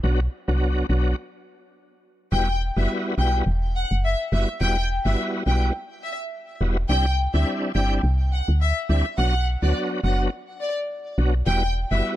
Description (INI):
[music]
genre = dancehall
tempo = 105 BPM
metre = 4/4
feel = swing 56% on 16ths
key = E minor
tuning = A4 = 440 Hz
[part]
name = bright tonewheel organ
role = accompaniment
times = 0.0-12.2 s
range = F#3 to F#4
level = -27 LUFS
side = equal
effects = overdrive, chorus vibrato, fast rotary speaker
[part]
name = woody FM bass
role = bass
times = 0.0-12.0 s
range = E1 to D2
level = -21 LUFS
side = equal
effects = none
[part]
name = rich studio violin section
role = melody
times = 2.3-12.0 s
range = D5 to G5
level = -27 LUFS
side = left 2 dB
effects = digital delay
[sound]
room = small room reverb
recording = dark, warm production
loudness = -21 LUFS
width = side -14 dB against mid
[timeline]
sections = 0.0-2.3 A section; 2.3-12.2 B section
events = stop 1.2-2.3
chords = 0.0 Bm; 2.3 Emadd9; 6.9 Cadd9; 9.2 Bm; 11.5 Emadd9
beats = | 0.04 0.61 1.18 1.75 | 2.32 2.89 3.46 4.04 | 4.61 5.18 5.75 6.32 | 6.89 7.46 8.04 8.61 | 9.18 9.75 10.32 10.89 | 11.46 12.04